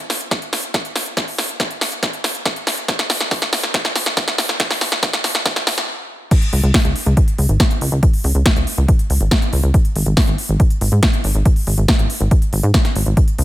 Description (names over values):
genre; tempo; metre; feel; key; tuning
uplifting trance; 140 BPM; 4/4; straight; unclear; A4 = 440 Hz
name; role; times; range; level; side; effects
big-room dance drum kit; drums; 0.1-13.4 s; crash cymbal, hi-hat, snare drum; -19 LUFS; equal; high-pass filter on snare, high-pass filter on hats, high-pass filter on cymbals, high-pass filter on room
electronic kick drum; drums; 0.3-13.3 s; none; -15 LUFS; equal; high-pass filter on kick
plucky analog bass; bass; 6.5-13.4 s; G#1 to G#2; -15 LUFS; equal; sidechain pumping
room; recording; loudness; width
little or no reverb; none; -14 LUFS; side -15 dB against mid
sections
0.0-6.3 A section; 6.3-13.4 B section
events
build-up 0.0-6.3; drum fill 0.0-5.9; stop 5.9-6.3; drop 6.3-13.4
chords
none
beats
0.31 0.74 | 1.17 1.60 2.03 2.46 | 2.88 3.31 3.74 4.17 | 4.60 5.03 5.46 5.88 | 6.31 6.74 7.17 7.60 | 8.03 8.46 8.88 9.31 | 9.74 10.17 10.60 11.03 | 11.46 11.88 12.31 12.74 | 13.17